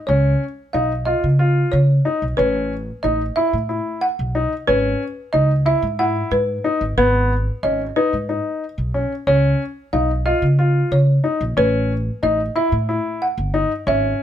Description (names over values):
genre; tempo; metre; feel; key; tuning
progressive instrumental, band music in an uneven meter; 183 BPM (eighths); 7/8; straight; unclear; A4 = 441 Hz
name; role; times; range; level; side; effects
folk marimba with medium mallets; melody; 0.1-14.2 s; B4 to F#5; -21 LUFS; right 1 dB; plate reverb
warm grand piano; arpeggios; 0.1-14.2 s; B3 to E#4; -21 LUFS; left 2 dB; none
upright bass; bass; 0.1-14.1 s; G1 to C#3; -19 LUFS; equal; none
room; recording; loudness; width
light reverb; none; -17 LUFS; side -10 dB against mid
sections
0.1-14.2 A section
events
none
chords
0.1 C#; 2.4 Asus2; 4.7 E/G#; 7.0 G#m; 9.3 C#; 11.6 Asus2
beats
| 0.08 0.41 0.74 1.07 1.40 1.72 2.05 | 2.38 2.71 3.04 3.37 3.69 4.02 4.35 | 4.68 5.01 5.33 5.66 5.99 6.32 6.65 | 6.98 7.30 7.63 7.96 8.29 8.62 8.95 | 9.27 9.60 9.93 10.26 10.59 10.92 11.24 | 11.57 11.90 12.23 12.56 12.89 13.21 13.54 | 13.87 14.20